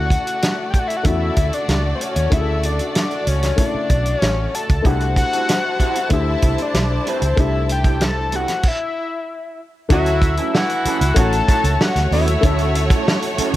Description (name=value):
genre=lush 1970s-style soul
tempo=95 BPM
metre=4/4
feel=straight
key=D major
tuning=A4 = 440 Hz
part: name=fat analog lead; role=melody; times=0.0-13.3 s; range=C5 to A5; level=-22 LUFS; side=left 2 dB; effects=none
part: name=warm symphonic violin section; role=second line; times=0.0-13.6 s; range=A3 to A5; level=-27 LUFS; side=equal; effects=none
part: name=dark baby grand piano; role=accompaniment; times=0.0-13.6 s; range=C#3 to A4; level=-26 LUFS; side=left 4 dB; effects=none
part: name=vintage muted fingered electric bass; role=bass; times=0.0-13.6 s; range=A1 to E2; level=-20 LUFS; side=right 1 dB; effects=none
part: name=warm soul drum kit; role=drums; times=0.1-13.6 s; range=crash cymbal, hi-hat, kick drum, snare drum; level=-19 LUFS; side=right 1 dB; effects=none
part: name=electric guitar through a small old amp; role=riff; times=4.8-13.6 s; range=F#3 to B4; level=-28 LUFS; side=right 7 dB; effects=analog chorus
part: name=warm horn section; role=stabs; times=9.9-11.7 s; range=E3 to F#4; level=-24 LUFS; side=right 2 dB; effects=analog delay
room=small room ambience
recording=none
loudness=-16 LUFS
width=side -14 dB against mid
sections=0.0-9.9 A section; 9.9-13.6 B section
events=stop 8.6-9.9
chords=0.0 Dmaj9; 4.8 C6; 9.9 Dmaj9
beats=0.42 1.05 1.69 | 2.32 2.95 3.58 4.21 | 4.84 5.48 6.11 6.74 | 7.38 8.01 8.64 9.27 | 9.90 10.54 11.17 11.80 | 12.43 13.06